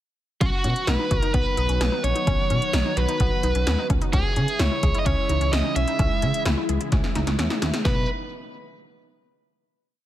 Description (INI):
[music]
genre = synth-pop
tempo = 129 BPM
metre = 4/4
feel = straight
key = B major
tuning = A4 = 439 Hz
[part]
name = bluesy overdriven lead guitar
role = melody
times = 0.4-8.1 s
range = F#4 to E5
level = -26 LUFS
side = right 1 dB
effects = distortion
[part]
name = lush unison pad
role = sustained chords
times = 0.8-8.1 s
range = C#3 to F#4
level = -31 LUFS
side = equal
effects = chorus, phaser
[part]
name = wide unison pluck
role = arpeggios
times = 0.4-8.1 s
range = B3 to G#4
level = -32 LUFS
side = left 2 dB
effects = digital delay
[part]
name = smooth gliding synth bass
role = bass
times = 0.4-8.1 s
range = A#1 to C#3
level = -24 LUFS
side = equal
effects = none
[part]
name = 80s electronic pad drums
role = drums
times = 0.4-8.0 s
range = hi-hat, kick drum, snare drum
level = -24 LUFS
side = equal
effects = none
[sound]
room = light reverb, digital ambience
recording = dense, heavily limited modern master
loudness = -20 LUFS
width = side -13 dB against mid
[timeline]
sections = 0.4-7.9 verse; 7.9-9.7 final chord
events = drum fill 6.9-7.9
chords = 0.4 B; 4.1 C#m; 7.9 B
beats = | 0.41 0.88 1.34 1.81 | 2.27 2.74 3.20 3.67 | 4.13 4.60 5.06 5.53 | 5.99 6.46 6.92 7.39 | 7.85